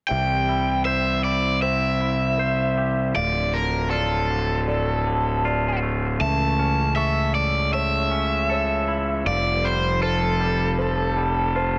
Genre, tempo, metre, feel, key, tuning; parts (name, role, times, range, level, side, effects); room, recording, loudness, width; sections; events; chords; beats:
rock; 78 BPM; 4/4; straight; A4 = 440 Hz
overdriven electric guitar; melody; 0.1-11.8 s; A4 to A5; -26 LUFS; equal; analog delay
pedal steel guitar; sustained chords; 0.1-11.8 s; C3 to A3; -36 LUFS; equal
felt-muted upright piano; arpeggios; 0.1-11.8 s; C5 to C#6; -36 LUFS; equal; analog delay
twangy electric guitar; arpeggios; 0.1-11.8 s; D2 to C5; -33 LUFS; equal; analog delay
fuzz fingered electric bass; bass; 0.1-11.8 s; D1 to C#2; -26 LUFS; equal; overdrive
light reverb, digital ambience; -22 LUFS; mono
0.1-11.8 A section
0.1 C; 3.2 Dm; 6.2 A/C#; 9.3 Fadd9
| 0.10 0.87 1.63 2.40 | 3.16 3.92 4.69 5.45 | 6.22 6.98 7.74 8.51 | 9.27 10.04 10.80 11.56